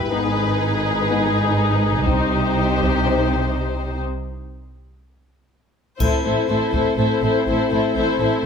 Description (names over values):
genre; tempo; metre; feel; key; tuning
cinematic, epic orchestral film score; 122 BPM; 4/4; straight; unclear; A4 = 439 Hz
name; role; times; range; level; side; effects
dark symphonic violin section; melody; 0.0-8.4 s; B4 to C5; -25 LUFS; left 7 dB; none
dark chamber violin section; second line; 0.0-8.4 s; G4 to A4; -25 LUFS; left 2 dB; none
warm symphonic viola section; accompaniment; 0.0-8.4 s; D#4 to E4; -24 LUFS; left 1 dB; none
warm symphonic cello section; bass; 0.0-8.3 s; E2 to C3; -25 LUFS; right 2 dB; none
warm symphonic double bass section; bass; 0.0-8.3 s; E1 to C2; -25 LUFS; right 3 dB; none
mellow French horn section; sustained chords; 0.1-8.5 s; A3 to D#4; -26 LUFS; left 4 dB; none
taiko ensemble; drums; 2.1-3.0, 6.0-7.0 s; none; -24 LUFS; equal; none
triangle; percussion; 6.0-6.9 s; none; -33 LUFS; left 2 dB; none
room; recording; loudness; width
light reverb; close, detailed microphones; -17 LUFS; side -6 dB against mid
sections
0.0-6.0 A section; 6.0-8.5 B section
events
break 4.0-6.0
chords
0.1 G#m; 2.1 Cm; 4.0 N.C.; 6.0 Am